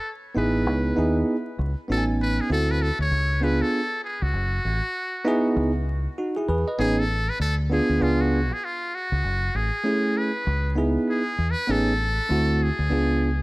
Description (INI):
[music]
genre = hip hop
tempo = 98 BPM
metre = 4/4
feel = swing 61% on 16ths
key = C# minor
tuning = A4 = 438 Hz
[part]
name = trumpet with metal mute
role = melody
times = 0.0-13.4 s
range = E#4 to C#5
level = -28 LUFS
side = equal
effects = analog delay
[part]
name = bell-like tine electric piano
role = accompaniment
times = 0.3-13.3 s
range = A3 to G#5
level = -23 LUFS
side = right 1 dB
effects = none
[part]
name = deep dub fingered electric bass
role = bass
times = 0.4-13.4 s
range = F#1 to E2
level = -24 LUFS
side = equal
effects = none
[sound]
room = moderate echo chamber reverb, RT60 1.9 s, studio reverb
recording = vinyl crackle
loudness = -21 LUFS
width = side -21 dB against mid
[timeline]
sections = 0.0-1.9 A section; 1.9-13.4 B section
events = muted trumpet solo 1.9-13.4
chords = 0.0 F#m9 (rootless); 0.7 C#m9; 1.9 Amaj9#11; 2.5 D9; 3.1 C#7b9; 4.3 F#m9; 5.6 C#m9; 6.8 Amaj9#11; 7.4 D5; 8.0 C#7b9; 9.2 F#m9; 10.5 C#m9; 11.7 Amaj9#11; 12.3 D9; 12.9 C#7b9